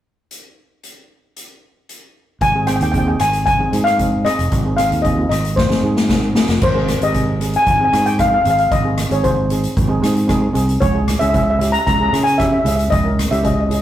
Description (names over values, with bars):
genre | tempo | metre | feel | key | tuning
calypso | 114 BPM | 4/4 | straight | Ab major | A4 = 440 Hz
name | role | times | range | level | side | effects
street-band drum kit | drums | 0.3-13.8 s | crash cymbal, hi-hat, kick drum, rim click, snare drum | -20 LUFS | equal | none
steel pan | melody | 2.4-13.8 s | C5 to Bb5 | -17 LUFS | left 2 dB | none
fingered electric bass | bass | 2.4-13.8 s | F1 to Db3 | -19 LUFS | right 1 dB | none
steel pan | accompaniment | 2.5-13.8 s | C4 to Bb4 | -23 LUFS | right 2 dB | none
room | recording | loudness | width
moderate stone room reverb, RT60 1.2 s | rough rehearsal-room recording, warm saturation | -14 LUFS | side -12 dB against mid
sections
0.3-2.4 A section; 2.4-6.6 B section; 6.6-13.8 C section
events
drum fill 5.6-6.6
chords
0.3 N.C.; 2.4 Ab; 10.8 Dbm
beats
| 0.31 0.83 1.36 1.89 | 2.41 2.94 3.46 3.99 | 4.51 5.04 5.56 6.09 | 6.62 7.14 7.67 8.19 | 8.72 9.24 9.77 10.29 | 10.82 11.35 11.87 12.40 | 12.92 13.45